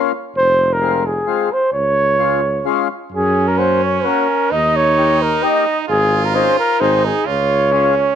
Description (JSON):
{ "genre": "alpine folk, alpine dance band", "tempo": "131 BPM", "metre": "3/4", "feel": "swing 53% on 8ths", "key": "Db major", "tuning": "A4 = 441 Hz", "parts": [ { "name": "warm flugelhorn", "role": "melody", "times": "0.0-8.2 s", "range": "F4 to Eb5", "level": "-15 LUFS", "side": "right 1 dB", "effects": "none" }, { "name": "mellow accordion", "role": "accompaniment", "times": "0.0-7.9 s", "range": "Ab3 to Ab4", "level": "-20 LUFS", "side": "left 11 dB", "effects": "none" }, { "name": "warm tuba", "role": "bass", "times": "0.4-8.2 s", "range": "F1 to Gb2", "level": "-21 LUFS", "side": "equal", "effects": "none" }, { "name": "brilliant trumpet", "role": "second line", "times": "3.1-8.2 s", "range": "Db4 to F4", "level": "-20 LUFS", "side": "right 10 dB", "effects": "none" } ], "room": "moderate echo chamber reverb, RT60 1.3 s", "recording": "1960s-style stereo with parts hard left and right", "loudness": "-13 LUFS", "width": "side -8 dB against mid", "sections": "0.0-8.2 A section", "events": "none", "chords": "0.4 Fm; 1.7 Db; 3.1 Gb; 4.5 Eb7; 5.9 Absus4; 6.8 Ab; 7.3 Db" }